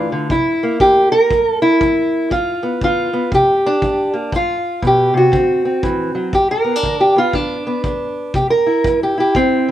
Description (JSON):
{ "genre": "acoustic country blues, solo or duo", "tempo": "119 BPM", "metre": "4/4", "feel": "swing 62% on 8ths", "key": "unclear", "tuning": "A4 = 440 Hz", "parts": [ { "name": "fingerpicked steel-string acoustic guitar", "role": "melody", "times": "0.0-9.7 s", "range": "G2 to Bb4", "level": "-13 LUFS", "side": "equal", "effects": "slapback echo" }, { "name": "kick drum", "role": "drums", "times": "0.3-9.5 s", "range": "none", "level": "-25 LUFS", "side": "equal", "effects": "none" } ], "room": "little or no reverb", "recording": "none", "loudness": "-13 LUFS", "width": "side -12 dB against mid", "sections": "0.0-6.3 A section; 6.3-9.7 B section", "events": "steel-string acoustic guitar solo 6.3-9.7", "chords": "0.3 C7; 2.3 G7; 3.3 C; 4.3 G7; 5.3 D7; 6.3 G; 8.3 C7", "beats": "| 0.30 0.81 1.31 1.81 | 2.31 2.82 3.32 3.82 | 4.32 4.83 5.33 5.83 | 6.33 6.84 7.34 7.84 | 8.35 8.85 9.35" }